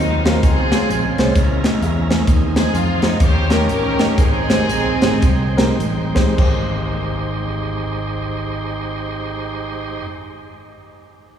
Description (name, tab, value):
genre	uptempo gospel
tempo	98-130 BPM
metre	4/4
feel	swing 63% on 8ths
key	Ab major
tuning	A4 = 440 Hz
part	warm studio string section	melody	0.0-5.8 s	Gb3 to C5	-23 LUFS	equal	none
part	warm upright piano	accompaniment	0.0-10.1 s	Ab1 to Ab5	-25 LUFS	equal	none
part	bright tonewheel organ	sustained chords	0.0-10.1 s	Db3 to G5	-26 LUFS	right 4 dB	fast rotary speaker, overdrive
part	fingered electric bass	bass	0.0-10.1 s	Ab1 to F2	-22 LUFS	equal	none
part	crisp fusion drum kit	drums	0.3-6.6 s	crash cymbal, hi-hat, kick drum, snare drum	-18 LUFS	equal	none
room	wet cathedral reverb, RT60 4.2 s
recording	recorded in a church or concert hall, studio ambience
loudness	-15 LUFS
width	side -9 dB against mid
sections	0.0-6.4 A section; 6.4-11.3 B section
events	slowing down 2.3-6.4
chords	0.4 Dbmaj7; 1.4 Dbm6; 2.3 Ab/Eb; 3.2 Eb7; 4.2 Abmaj7